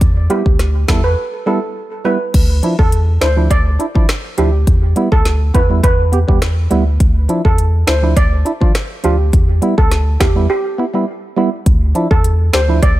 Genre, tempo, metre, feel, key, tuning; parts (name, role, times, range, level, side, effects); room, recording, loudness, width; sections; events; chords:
dancehall; 103 BPM; 4/4; straight; D dorian; A4 = 440 Hz
saturated sub bass; bass; 0.0-13.0 s; D2 to E2; -14 LUFS; equal
afro-pop drum kit; drums; 0.0-13.0 s; crash cymbal, finger snaps, hi-hat, kick drum, rim click, snare drum; -14 LUFS; equal
steel pan; melody; 0.3-13.0 s; G4 to D5; -20 LUFS; right 2 dB; digital delay
percussive organ stab; accompaniment; 0.3-12.8 s; F3 to G4; -18 LUFS; right 2 dB; chorus
little or no reverb; -12 LUFS; side -16 dB against mid
0.0-2.3 A section; 2.3-13.0 B section
break 1.2-2.3, 10.5-11.7
0.0 Em; 2.3 Dmadd9; 4.7 Em; 7.0 Dmadd9; 9.3 Em; 11.7 Dmadd9